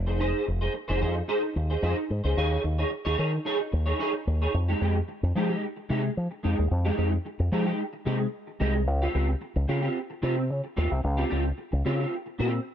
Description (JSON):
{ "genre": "disco", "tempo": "111 BPM", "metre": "4/4", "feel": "straight", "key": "F minor", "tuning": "A4 = 439 Hz", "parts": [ { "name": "fingered electric bass with an envelope filter", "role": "bass", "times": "0.0-12.6 s", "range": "F1 to F3", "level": "-26 LUFS", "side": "equal", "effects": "none" }, { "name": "clean electric guitar", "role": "accompaniment", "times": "0.1-12.6 s", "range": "Ab3 to Db5", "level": "-29 LUFS", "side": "right 1 dB", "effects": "ensemble chorus" } ], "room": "digital ambience", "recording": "none", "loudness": "-25 LUFS", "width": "side -9 dB against mid", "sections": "0.0-4.5 A section; 4.5-12.7 B section", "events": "none", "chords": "0.0 Fm7; 2.4 Eb7sus4; 4.5 Fm9; 8.9 Dbmaj7#11" }